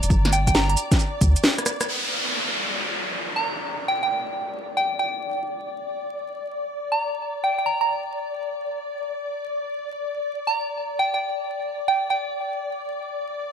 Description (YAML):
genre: UK garage, two-step garage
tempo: 135 BPM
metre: 4/4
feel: swing 66% on 16ths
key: unclear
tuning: A4 = 436 Hz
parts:
  - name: soft string machine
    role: sustained chords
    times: 0.0-13.5 s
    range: D5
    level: -30 LUFS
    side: left 2 dB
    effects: ensemble chorus, sidechain pumping
  - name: soft dub sub bass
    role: bass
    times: 0.0-1.3 s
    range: F1 to D2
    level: -20 LUFS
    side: equal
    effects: none
  - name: house drum kit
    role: drums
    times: 0.0-1.9 s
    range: hi-hat, rim click, shaker, snare drum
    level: -22 LUFS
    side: equal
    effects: none
  - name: electronic kick drum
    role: drums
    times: 0.1-1.3 s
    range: none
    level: -20 LUFS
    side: equal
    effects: overdrive
  - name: soft synth bell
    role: melody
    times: 0.3-12.4 s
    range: G5 to Bb5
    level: -25 LUFS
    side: right 2 dB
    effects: chorus, phaser, ping-pong delay
  - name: downlifter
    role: sound effects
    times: 1.9-5.4 s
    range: none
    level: -27 LUFS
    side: equal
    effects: none
room: moderate plate reverb, RT60 1.7 s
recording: vinyl crackle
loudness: -22 LUFS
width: side -7 dB against mid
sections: 0.0-1.9 A section; 1.9-13.5 B section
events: drum fill 1.4-1.9; band accent 1.8; filter sweep on string machine 1.9-13.5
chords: 0.0 G5; 1.9 N.C.